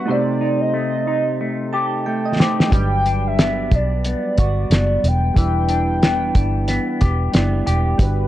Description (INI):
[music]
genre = indie pop, bedroom pop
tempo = 91 BPM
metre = 4/4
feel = swing 60% on 16ths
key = unclear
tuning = A4 = 441 Hz
[part]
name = warbly nostalgic lead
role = melody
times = 0.0-8.3 s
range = B4 to G5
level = -23 LUFS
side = equal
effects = lush chorus, analog delay
[part]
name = electric guitar with an envelope filter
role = accompaniment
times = 0.0-8.3 s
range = C3 to G4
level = -23 LUFS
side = left 2 dB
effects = wide subtle chorus, vibrato effect
[part]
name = soft electric-piano-like synth keys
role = accompaniment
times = 0.0-8.3 s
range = F#3 to A5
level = -26 LUFS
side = right 4 dB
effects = chorus, cassette tape
[part]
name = cloth-damped thuddy drum kit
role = drums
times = 2.4-8.2 s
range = hi-hat, kick drum, snare drum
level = -17 LUFS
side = equal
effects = none
[part]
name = vintage muted fingered electric bass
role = bass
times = 2.7-8.3 s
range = E1 to B1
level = -20 LUFS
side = equal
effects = none
[sound]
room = light reverb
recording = dark, warm production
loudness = -16 LUFS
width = side -14 dB against mid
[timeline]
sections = 0.0-8.3 A section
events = drum fill 1.4-2.7; synth keys fill 1.4-2.7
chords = 0.1 Cm6; 2.7 Em7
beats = | 0.09 0.75 1.41 2.06 | 2.72 3.38 4.04 4.70 | 5.36 6.02 6.68 7.33 | 7.99